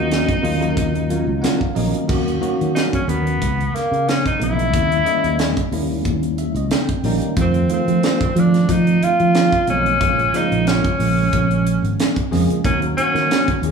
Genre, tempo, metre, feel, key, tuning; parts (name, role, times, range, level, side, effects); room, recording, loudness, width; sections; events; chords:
electric jazz fusion; 91 BPM; 4/4; swing 54% on 16ths; Eb minor; A4 = 438 Hz
clear tenor saxophone; melody; 0.0-13.6 s; Bb3 to F4; -20 LUFS; equal
bell-like tine electric piano; accompaniment; 0.0-13.7 s; Db3 to G5; -22 LUFS; right 1 dB; fast stereo tremolo
mellow electric guitar; stabs; 0.0-2.0, 12.6-13.7 s; Gb3 to Bb4; -28 LUFS; left 1 dB; tape echo
fingered electric bass; bass; 0.0-13.7 s; Ab1 to F3; -20 LUFS; right 1 dB
crisp fusion drum kit; drums; 0.1-13.7 s; crash cymbal, hi-hat, kick drum, snare drum; -22 LUFS; right 1 dB
moderate large studio reverb, RT60 1.2 s; band playing live in one room, small room ambience; -16 LUFS; side -6 dB against mid
0.0-2.1 A section; 2.1-13.7 A section
tine electric piano fill 1.1-2.1, 6.0-7.4
0.0 Ebm9; 2.1 Ebm7; 3.4 Db13; 4.7 Eb7b9; 7.4 F7; 10.0 Bbm7; 12.6 Ebm7